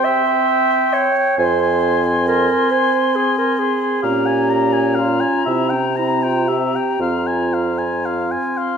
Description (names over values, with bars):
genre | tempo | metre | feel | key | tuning
classical, slow romantic movement for wind quintet | 37-46 BPM (dotted quarters) | 12/8 | rubato | F minor | A4 = 438 Hz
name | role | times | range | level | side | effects
hollow concert flute | melody | 0.0-8.8 s | Bb5 to C6 | -24 LUFS | left 7 dB | none
warm oboe | second line | 0.0-8.8 s | E5 to Bb5 | -21 LUFS | left 3 dB | none
mellow clarinet | accompaniment | 0.0-8.8 s | Db4 to E5 | -19 LUFS | right 6 dB | none
warm French horn | accompaniment | 0.0-8.8 s | C4 to Db4 | -24 LUFS | left 1 dB | none
mellow bassoon | bass | 1.4-8.3 s | F2 to C3 | -22 LUFS | right 1 dB | none
room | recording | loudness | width
wet recital hall reverb, RT60 1.4 s | none | -15 LUFS | side -6 dB against mid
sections
0.0-8.8 A section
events
none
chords
0.0 C; 1.4 Fm; 4.0 Bbm7; 5.5 C7; 7.0 Fm